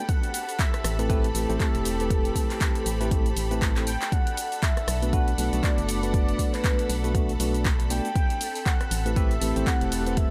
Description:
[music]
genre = deep house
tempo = 119 BPM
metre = 4/4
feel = swing 58% on 16ths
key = A dorian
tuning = A4 = 440 Hz
[part]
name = warm velvety synth lead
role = melody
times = 0.0-10.3 s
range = A4 to G5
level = -35 LUFS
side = equal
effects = chorus, analog delay
[part]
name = rich studio string section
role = texture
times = 0.0-10.3 s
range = C4 to B5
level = -38 LUFS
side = equal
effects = sidechain pumping
[part]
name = string machine, violins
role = texture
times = 0.0-10.3 s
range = A4 to B5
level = -44 LUFS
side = equal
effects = ensemble chorus, sidechain pumping
[part]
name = deep house drum kit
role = drums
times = 0.1-10.3 s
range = cabasa, handclaps, hi-hat, rim click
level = -34 LUFS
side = equal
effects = none
[part]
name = electronic kick drum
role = drums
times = 0.1-10.3 s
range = none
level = -27 LUFS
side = equal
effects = none
[part]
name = organ-like FM bass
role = bass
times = 0.8-10.3 s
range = E1 to B1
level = -30 LUFS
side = equal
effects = sidechain pumping
[part]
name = tine electric piano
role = stabs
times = 1.0-10.3 s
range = A3 to D5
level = -33 LUFS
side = equal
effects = sidechain pumping, analog delay
[sound]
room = light reverb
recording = echo-heavy mix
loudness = -25 LUFS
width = mono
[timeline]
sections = 0.0-10.3 A section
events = drum fill 3.7-4.1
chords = 0.1 Am9; 4.1 Bm7; 8.2 Am9

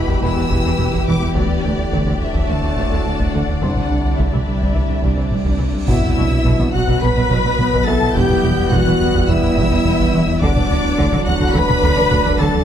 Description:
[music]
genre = cinematic, hybrid orchestral and electronic film score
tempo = 106 BPM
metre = 4/4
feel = straight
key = E minor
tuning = A4 = 438 Hz
[part]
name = rich symphonic violin section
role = melody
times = 0.0-12.6 s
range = D5 to B6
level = -27 LUFS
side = left 4 dB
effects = none
[part]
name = warm symphonic violin section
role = second line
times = 0.0-12.6 s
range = E4 to B5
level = -25 LUFS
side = left 5 dB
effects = none
[part]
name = bright symphonic viola section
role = accompaniment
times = 0.0-12.6 s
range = D3 to B4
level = -26 LUFS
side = right 2 dB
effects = none
[part]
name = bright trombone section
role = sustained chords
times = 0.0-12.6 s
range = G2 to D4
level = -24 LUFS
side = right 5 dB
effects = none
[part]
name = ethereal airy pad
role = sustained chords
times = 0.0-12.6 s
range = D3 to D5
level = -25 LUFS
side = left 1 dB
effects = ensemble chorus, built-in reverb
[part]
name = warm French horn section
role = sustained chords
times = 0.0-12.6 s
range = G3 to B4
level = -25 LUFS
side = left 4 dB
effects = none
[part]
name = round analog bass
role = riff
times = 0.0-12.6 s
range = C2 to B3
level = -22 LUFS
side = right 1 dB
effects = none
[part]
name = sub bass with octave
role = bass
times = 0.0-12.6 s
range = D1 to C2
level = -25 LUFS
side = equal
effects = none
[part]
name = rich symphonic cello section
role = bass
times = 0.1-12.6 s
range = C2 to D3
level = -24 LUFS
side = right 1 dB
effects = none
[part]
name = taiko ensemble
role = drums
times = 0.1-12.6 s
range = none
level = -23 LUFS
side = equal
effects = none
[part]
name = rich symphonic double bass section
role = bass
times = 0.2-12.5 s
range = E1 to D2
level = -24 LUFS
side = right 2 dB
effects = none
[part]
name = felt-muted upright piano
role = texture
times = 0.2-12.6 s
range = E4 to C6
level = -34 LUFS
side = left 1 dB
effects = ping-pong delay
[part]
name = cymbal swell and sub drop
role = sound effects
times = 5.5-8.2 s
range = none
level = -26 LUFS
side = left 1 dB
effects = none
[sound]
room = light reverb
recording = close, detailed microphones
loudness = -14 LUFS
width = side -9 dB against mid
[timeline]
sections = 0.0-5.9 A section; 5.9-12.6 A section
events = cymbal swell 5.5-5.9; impact 5.9-8.2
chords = 0.0 Em; 1.4 D; 3.6 Cadd9; 5.9 Bsus4; 8.2 Em; 10.4 D

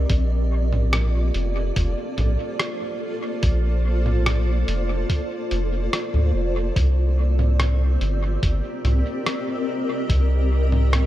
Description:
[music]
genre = ambient dub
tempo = 72 BPM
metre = 4/4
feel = straight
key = unclear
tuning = A4 = 442 Hz
[part]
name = granular cloud pad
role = sustained chords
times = 0.0-11.1 s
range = Bb3 to Eb5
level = -27 LUFS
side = equal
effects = built-in reverb
[part]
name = soft dub sub bass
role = bass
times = 0.0-11.1 s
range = F1 to D2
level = -20 LUFS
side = equal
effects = none
[part]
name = electronic kick drum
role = drums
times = 0.1-10.3 s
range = none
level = -22 LUFS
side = equal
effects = none
[part]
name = lo-fi sampler-style drum kit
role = drums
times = 0.1-11.1 s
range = congas, hi-hat, rim click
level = -27 LUFS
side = right 1 dB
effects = dub echo
[sound]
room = digital ambience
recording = none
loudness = -20 LUFS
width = side -14 dB against mid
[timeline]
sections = 0.0-11.1 A section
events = none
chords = 0.1 Bbmaj7; 6.8 Cm7

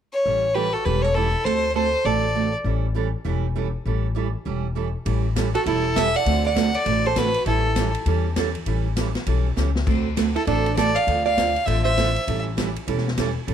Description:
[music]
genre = country, western swing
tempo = 200 BPM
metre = 4/4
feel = swing 62% on 8ths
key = A mixolydian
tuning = A4 = 440 Hz
[part]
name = clear fiddle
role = melody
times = 0.1-2.5, 5.5-7.9, 10.4-12.4 s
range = A4 to F#5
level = -23 LUFS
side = left 2 dB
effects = none
[part]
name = picked steel-string acoustic guitar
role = accompaniment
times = 0.3-13.5 s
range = D3 to A4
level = -27 LUFS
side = right 10 dB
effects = none
[part]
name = upright bass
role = bass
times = 0.3-13.5 s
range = E1 to E2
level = -24 LUFS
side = left 2 dB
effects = none
[part]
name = archtop guitar, miked and amplified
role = second line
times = 0.6-2.5, 5.5-7.9, 10.4-12.2 s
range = D4 to D5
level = -26 LUFS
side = right 12 dB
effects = none
[part]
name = swinging big-band drum kit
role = drums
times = 5.1-13.5 s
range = crash cymbal, hi-hat, kick drum, ride cymbal, snare drum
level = -29 LUFS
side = left 2 dB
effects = none
[sound]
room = light reverb, small room ambience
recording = 1960s-style stereo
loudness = -20 LUFS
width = side -9 dB against mid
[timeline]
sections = 0.2-5.1 A section; 5.1-13.5 B section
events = drum fill 9.6-9.9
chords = 0.2 A7; 1.4 D7; 2.7 A7; 6.3 D7; 7.5 A7; 9.9 D7; 11.1 Dm7; 12.3 A7

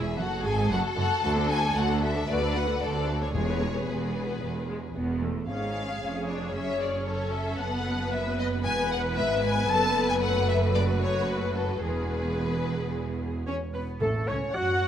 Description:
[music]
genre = quick classical-period movement for symphony orchestra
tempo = 114 BPM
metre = 4/4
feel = straight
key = unclear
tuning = A4 = 440 Hz
[part]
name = warm studio violin section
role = melody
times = 0.0-14.9 s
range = A4 to A5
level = -32 LUFS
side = left 3 dB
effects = none
[part]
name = rich studio violin section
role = second line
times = 0.0-14.9 s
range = G#4 to F#5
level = -32 LUFS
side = left 4 dB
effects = none
[part]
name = rich studio cello section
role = bass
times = 0.0-14.9 s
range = D2 to F#4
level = -32 LUFS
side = right 2 dB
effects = none
[part]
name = warm studio double bass section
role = bass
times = 0.0-14.9 s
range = E1 to F#2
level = -32 LUFS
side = right 2 dB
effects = none
[part]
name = rich studio viola section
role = accompaniment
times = 0.2-14.9 s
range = G#3 to F#5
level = -32 LUFS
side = right 1 dB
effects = none
[part]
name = timpani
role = percussion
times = 3.3-4.1, 14.0-14.8 s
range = E2 to A2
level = -34 LUFS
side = left 2 dB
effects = none
[part]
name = mellow French horn section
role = sustained chords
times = 13.5-14.9 s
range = A3 to F#4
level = -37 LUFS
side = left 7 dB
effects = none
[part]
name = clear oboe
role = second line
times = 14.0-14.9 s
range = A4 to F#5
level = -32 LUFS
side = equal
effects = none
[part]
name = large flute ensemble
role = second line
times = 14.0-14.9 s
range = A4 to F#5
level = -35 LUFS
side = left 1 dB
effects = none
[part]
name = warm bassoon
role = accompaniment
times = 14.0-14.9 s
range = A3 to F#4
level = -34 LUFS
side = right 3 dB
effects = none
[sound]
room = moderate concert hall reverb, RT60 2.1 s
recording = none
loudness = -25 LUFS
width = side -9 dB against mid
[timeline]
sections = 0.0-14.0 A section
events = none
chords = 0.0 F#m; 1.2 D; 3.3 E; 5.5 C#/G#; 6.6 F#m; 7.6 B5/F#; 8.7 E; 9.7 F#madd11; 11.8 E; 14.0 A

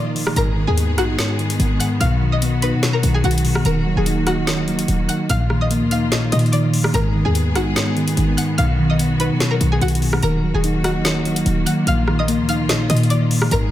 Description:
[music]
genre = hip hop, trap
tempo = 146 BPM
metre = 4/4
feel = half-time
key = Eb minor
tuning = A4 = 440 Hz
[part]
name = string-like resonator pluck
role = melody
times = 0.0-13.7 s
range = Gb4 to Gb6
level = -25 LUFS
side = left 2 dB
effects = chorus, low-pass filter, diffuse ambient delay
[part]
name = muted felt-like synth keys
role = accompaniment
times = 0.0-13.7 s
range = Ab2 to Eb5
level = -19 LUFS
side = equal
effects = chorus, low-pass filter
[part]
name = bright symphonic string section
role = sustained chords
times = 0.0-13.7 s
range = Eb3 to Ab4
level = -26 LUFS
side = left 1 dB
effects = none
[part]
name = short 808-style bass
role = bass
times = 0.0-13.7 s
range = Eb1 to B2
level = -21 LUFS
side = equal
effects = none
[part]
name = trap drum kit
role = drums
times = 0.2-13.6 s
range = hi-hat, rim click, snare drum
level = -24 LUFS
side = equal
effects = none
[sound]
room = moderate plate reverb, RT60 1.8 s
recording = dreamy mix soaked in reverb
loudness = -16 LUFS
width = side -13 dB against mid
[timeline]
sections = 0.0-10.2 A section; 10.2-13.7 A section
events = none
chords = 0.4 Abm; 2.0 B; 3.7 Ebm; 5.3 Bbsus4; 6.9 Abm; 8.6 B; 10.2 Ebm; 11.9 Bbsus4

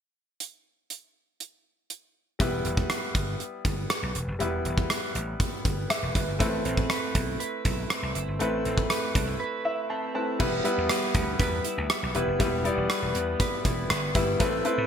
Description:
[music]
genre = 1980s-style pop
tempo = 120 BPM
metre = 4/4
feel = straight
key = E minor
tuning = A4 = 440 Hz
[part]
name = gated 80s drum kit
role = drums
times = 0.4-14.8 s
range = crash cymbal, hi-hat, kick drum, rim click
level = -27 LUFS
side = equal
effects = none
[part]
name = clear concert grand piano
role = accompaniment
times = 2.4-14.9 s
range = G3 to A5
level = -29 LUFS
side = left 2 dB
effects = none
[part]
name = vintage slap bass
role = bass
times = 2.4-14.9 s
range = E1 to A2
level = -32 LUFS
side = equal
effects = none
[part]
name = direct-recorded clean electric guitar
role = riff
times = 6.4-14.9 s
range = G3 to B4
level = -34 LUFS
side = right 5 dB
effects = analog chorus, ping-pong delay
[sound]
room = moderate plate reverb, RT60 1.1 s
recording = bright 1980s-style digital production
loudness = -25 LUFS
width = side -8 dB against mid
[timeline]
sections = 0.4-2.4 A section; 2.4-10.4 B section; 10.4-14.9 C section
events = break 9.4-10.4; grand piano fill 9.4-10.4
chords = 0.4 N.C.; 2.4 Em; 6.4 Amadd9; 10.4 Em

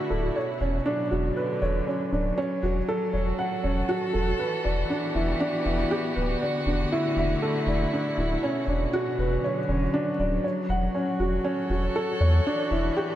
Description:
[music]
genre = piano and strings electronica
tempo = 119 BPM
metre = 4/4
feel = straight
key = E dorian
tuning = A4 = 440 Hz
[part]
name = muted string quartet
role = sustained chords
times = 0.0-13.2 s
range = B2 to C#5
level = -30 LUFS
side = left 1 dB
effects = none
[part]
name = dark upright piano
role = riff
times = 0.0-13.2 s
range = C#4 to F#5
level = -26 LUFS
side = right 1 dB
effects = tape echo
[part]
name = warm sub bass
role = bass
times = 0.1-12.9 s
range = D1 to E2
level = -27 LUFS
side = equal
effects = none
[sound]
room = moderate huge ambient reverb, RT60 7.9 s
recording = dreamy mix soaked in reverb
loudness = -24 LUFS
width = side -12 dB against mid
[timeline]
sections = 0.0-13.2 A section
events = none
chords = 0.4 Bmadd9/E; 2.4 F#m/E; 4.4 Em7; 6.4 Dadd9/E; 8.4 Bmadd9/E; 10.4 F#m/E; 12.5 Em7

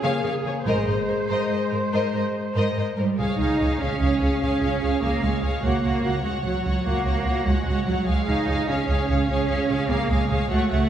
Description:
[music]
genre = cinematic, heroic adventure film score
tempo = 98 BPM (dotted quarters)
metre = 12/8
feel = straight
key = Ab major, Db major from 3.2 s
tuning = A4 = 439 Hz
[part]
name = warm symphonic violin section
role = melody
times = 0.0-10.9 s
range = C5 to Gb5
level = -30 LUFS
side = left 4 dB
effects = none
[part]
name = warm symphonic violin section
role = second line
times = 0.0-10.9 s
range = Ab4 to Db5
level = -32 LUFS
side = left 2 dB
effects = none
[part]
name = rich studio viola section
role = accompaniment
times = 0.0-10.9 s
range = Gb4 to C5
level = -30 LUFS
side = right 2 dB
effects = none
[part]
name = mellow French horn section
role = sustained chords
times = 0.0-2.6 s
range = Ab3 to Bb3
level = -27 LUFS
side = left 3 dB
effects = none
[part]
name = rich symphonic cello section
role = bass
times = 0.0-10.9 s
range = Ab2 to Eb4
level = -25 LUFS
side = right 2 dB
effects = none
[part]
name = warm symphonic double bass section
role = bass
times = 0.7-10.8 s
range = Ab1 to Db2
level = -25 LUFS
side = right 2 dB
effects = none
[sound]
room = wet scoring stage reverb, RT60 1.6 s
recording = heard from further back in the room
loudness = -21 LUFS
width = side -10 dB against mid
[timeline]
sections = 0.0-3.2 A section; 3.2-10.9 B section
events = none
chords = 0.0 Db; 0.7 Abadd9; 3.2 Db; 5.6 Gb/Db; 8.1 Db

